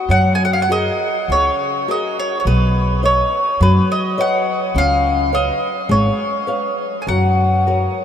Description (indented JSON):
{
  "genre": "fado-style ballad",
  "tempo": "103 BPM",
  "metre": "4/4",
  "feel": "rubato",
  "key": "F# major",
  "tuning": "A4 = 445 Hz",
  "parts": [
    { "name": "mandolin", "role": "melody", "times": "0.0-8.0 s", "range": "B4 to G#5", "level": "-18 LUFS", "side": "equal", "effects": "none" },
    { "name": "flamenco guitar", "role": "accompaniment", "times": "0.0-8.0 s", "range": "C#3 to E#5", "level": "-22 LUFS", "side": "left 1 dB", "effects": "none" },
    { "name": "upright bass", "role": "bass", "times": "0.1-7.9 s", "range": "G#1 to F#2", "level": "-17 LUFS", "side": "equal", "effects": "none" }
  ],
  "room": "wet huge ambient reverb, RT60 8.4 s",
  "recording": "in a vast, echoing space",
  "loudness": "-14 LUFS",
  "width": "side -9 dB against mid",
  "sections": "0.1-8.0 A section",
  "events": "none",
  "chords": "0.1 F#add9; 2.5 Badd9; 4.8 C#7; 7.1 F#"
}